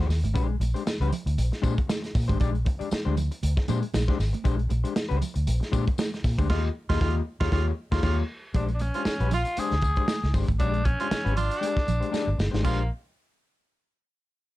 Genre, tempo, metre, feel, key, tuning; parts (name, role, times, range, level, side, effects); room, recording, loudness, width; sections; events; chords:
funk; 117 BPM; 4/4; swing 56% on 16ths; Bb mixolydian; A4 = 441 Hz
clean electric guitar; accompaniment; 0.0-12.8 s; Ab3 to Eb5; -32 LUFS; left 7 dB
vintage muted fingered electric bass; bass; 0.0-12.9 s; G1 to Bb2; -26 LUFS; equal
crunchy breakbeat drum kit; drums; 0.1-12.8 s; crash cymbal, hi-hat, kick drum, snare drum; -28 LUFS; equal
tambourine; percussion; 0.1-12.9 s; -46 LUFS; left 7 dB
congas; percussion; 0.3-12.9 s; -36 LUFS; right 8 dB
bright baritone saxophone; second line; 6.5-12.8 s; F4; -32 LUFS; right 7 dB
breathy tenor saxophone; melody; 8.6-12.9 s; Bb3 to Ab4; -30 LUFS; equal
little or no reverb; dark, warm production; -23 LUFS; side -16 dB against mid
0.0-8.6 A section; 8.6-12.7 B section; 12.7-14.6 C section
band accent 6.5-8.6; drum fill 12.1-12.7
0.4 Bb13; 6.5 Eb9; 8.6 Bb13